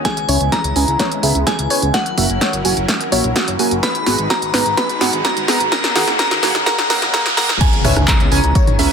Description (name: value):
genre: progressive house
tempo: 127 BPM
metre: 4/4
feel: straight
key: unclear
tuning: A4 = 443 Hz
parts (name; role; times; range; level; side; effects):
- glassy synth bell; melody; 0.0-8.9 s; F#5 to B5; -21 LUFS; equal; chorus, ping-pong delay
- filtered supersaw swell; sustained chords; 0.0-8.9 s; C#3 to B4; -26 LUFS; equal; phaser, sidechain pumping
- swell, riser and impact; sound effects; 0.0-8.9 s; none; -24 LUFS; equal; none
- glassy wavetable pluck; arpeggios; 0.1-8.9 s; F#4 to C#5; -24 LUFS; right 1 dB; chorus, sidechain pumping, ping-pong delay
- deep house drum kit; drums; 0.1-8.9 s; crash cymbal, handclaps, hi-hat, snare drum; -19 LUFS; equal; high-pass filter on snare, high-pass filter on hats, high-pass filter on cymbals, high-pass filter on room
- electronic kick drum; drums; 0.1-8.7 s; none; -20 LUFS; equal; high-pass filter on kick, high-pass filter on room
- chorused polysynth; stabs; 0.3-8.9 s; A#3 to A#5; -22 LUFS; right 2 dB; sidechain pumping, ping-pong delay
- fat analog bass; bass; 0.3-8.9 s; D#1 to D#2; -21 LUFS; equal; sidechain pumping
- punchy analog drum machine; percussion; 7.8-8.8 s; congas, rim click, toms; -21 LUFS; right 2 dB; sidechain pumping on snare, sidechain pumping on toms, sidechain pumping on perc
room: moderate digital room reverb, RT60 1.1 s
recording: dense, heavily limited modern master, high-pass filter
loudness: -13 LUFS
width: side -6 dB against mid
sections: 0.1-7.6 A section; 7.6-8.9 B section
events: build-up 0.1-7.6; drum fill 0.1-7.6; riser 0.1-7.6; filter sweep on synth arpeggio sound 0.1-7.6; filter sweep on analog polysynth 0.1-7.6; filter sweep 0.1-7.6; drop 7.6-8.9; impact 7.6-8.9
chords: 0.1 C#m7; 1.9 F#7; 3.8 G#m7; 5.7 D#m7; 7.6 C#m7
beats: | 0.05 0.52 0.99 1.47 | 1.94 2.41 2.88 3.36 | 3.83 4.30 4.78 5.25 | 5.72 6.19 6.66 7.14 | 7.61 8.08 8.55